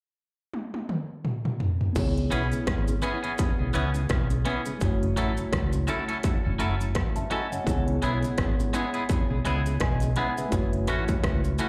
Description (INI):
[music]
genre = lovers rock reggae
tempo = 84 BPM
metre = 4/4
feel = swing 57% on 16ths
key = C# minor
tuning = A4 = 440 Hz
[part]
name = industrial drum kit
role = drums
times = 0.5-11.7 s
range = crash cymbal, hi-hat, kick drum, rim click, toms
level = -30 LUFS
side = equal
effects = distortion
[part]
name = mellow tine electric piano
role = accompaniment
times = 1.9-11.7 s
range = A3 to B5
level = -34 LUFS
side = equal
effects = tape echo, plate reverb, slapback echo
[part]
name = deep dub fingered electric bass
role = bass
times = 2.0-11.6 s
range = E1 to C#2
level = -30 LUFS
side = equal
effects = none
[part]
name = cabasa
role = percussion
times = 2.0-11.7 s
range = none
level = -48 LUFS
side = equal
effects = none
[part]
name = mellow tonewheel organ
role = accompaniment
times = 2.2-11.7 s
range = F#2 to F#4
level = -38 LUFS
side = equal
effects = slow rotary speaker, tape echo, plate reverb
[part]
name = twangy electric guitar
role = stabs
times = 2.3-11.7 s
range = E3 to A4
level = -34 LUFS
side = equal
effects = spring reverb, tape echo, plate reverb, slapback echo
[sound]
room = light reverb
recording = live gig heard through the venue's PA, club reverb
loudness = -27 LUFS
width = mono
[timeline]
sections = 0.0-2.0 A section; 2.0-11.7 B section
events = drum fill 0.5-2.0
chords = 0.0 N.C.; 2.0 C#m7; 4.8 F#m7; 7.7 C#m7; 10.5 F#m7